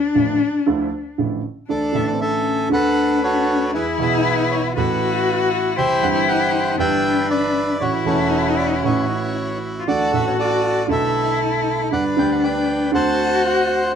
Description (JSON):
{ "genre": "tango", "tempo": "117 BPM", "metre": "4/4", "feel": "rubato", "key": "D major", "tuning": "A4 = 440 Hz", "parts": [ { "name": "rich cello", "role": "second line", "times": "0.0-14.0 s", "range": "C4 to F#4", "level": "-21 LUFS", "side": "left 5 dB", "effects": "none" }, { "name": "warm grand piano", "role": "accompaniment", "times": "0.1-13.9 s", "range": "E1 to A4", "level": "-23 LUFS", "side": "right 5 dB", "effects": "none" }, { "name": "bandoneon", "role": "melody", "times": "1.7-13.9 s", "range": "B3 to A5", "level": "-20 LUFS", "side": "equal", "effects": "none" } ], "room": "moderate studio reverb, RT60 0.6 s", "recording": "band playing live in one room", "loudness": "-17 LUFS", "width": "side -8 dB against mid", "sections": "0.0-1.7 A section; 1.7-14.0 B section", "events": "cello solo 0.0-1.7", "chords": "0.0 Dmadd9; 1.7 Dsus2; 2.7 Bm7/D; 3.7 E; 4.8 Asus2; 5.8 C; 6.8 G6; 7.8 A6; 9.9 Dadd9; 10.9 Bm7; 11.9 G; 12.9 D7" }